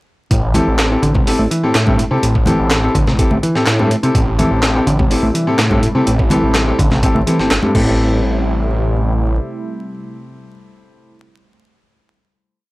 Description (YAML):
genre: breakbeat, breaks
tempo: 125 BPM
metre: 4/4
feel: straight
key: A minor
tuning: A4 = 440 Hz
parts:
  - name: picked electric bass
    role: riff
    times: 0.3-8.2 s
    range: G2 to A3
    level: -19 LUFS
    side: equal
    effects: tube saturation
  - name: phased detuned saw bass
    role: bass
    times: 0.3-9.4 s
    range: G1 to A2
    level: -18 LUFS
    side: equal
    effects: phaser
  - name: breakbeat sampler-style drum kit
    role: drums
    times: 0.3-7.8 s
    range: crash cymbal, hi-hat, kick drum, snare drum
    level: -17 LUFS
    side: equal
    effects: small room ambience
  - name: bright grand piano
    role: stabs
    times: 0.5-11.1 s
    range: C4 to A4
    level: -18 LUFS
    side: left 1 dB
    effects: vintage 12-bit sampler grit, tape echo
  - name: congas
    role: percussion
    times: 0.5-7.7 s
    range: none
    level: -23 LUFS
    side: left 1 dB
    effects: none
  - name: electronic handclaps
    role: drums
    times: 0.8-7.6 s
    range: none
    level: -24 LUFS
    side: equal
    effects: small room ambience
  - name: phased analog pad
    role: sustained chords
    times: 4.1-11.1 s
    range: C3 to E4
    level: -25 LUFS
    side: equal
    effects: phaser, chorus, sidechain pumping
room: light reverb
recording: dry, gritty hardware recording, transformer saturation, vinyl crackle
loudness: -12 LUFS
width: side -19 dB against mid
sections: 0.3-8.0 groove; 8.0-11.8 final hit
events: none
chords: 0.3 Am7